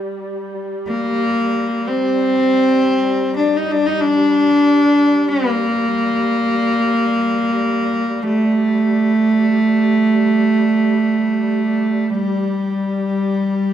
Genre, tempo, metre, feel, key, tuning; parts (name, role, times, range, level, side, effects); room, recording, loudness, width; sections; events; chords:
caucasian folk, Caucasian lament; free time; G minor; A4 = 440 Hz
rich studio string section; drone; 0.0-13.7 s; G3; -26 LUFS; right 1 dB
rich cello; melody; 0.9-13.7 s; G3 to Eb4; -14 LUFS; equal
moderate large studio reverb, RT60 1.1 s; band playing live in one room; -14 LUFS; side -10 dB against mid
0.0-13.7 A section
slowing down 5.8-13.7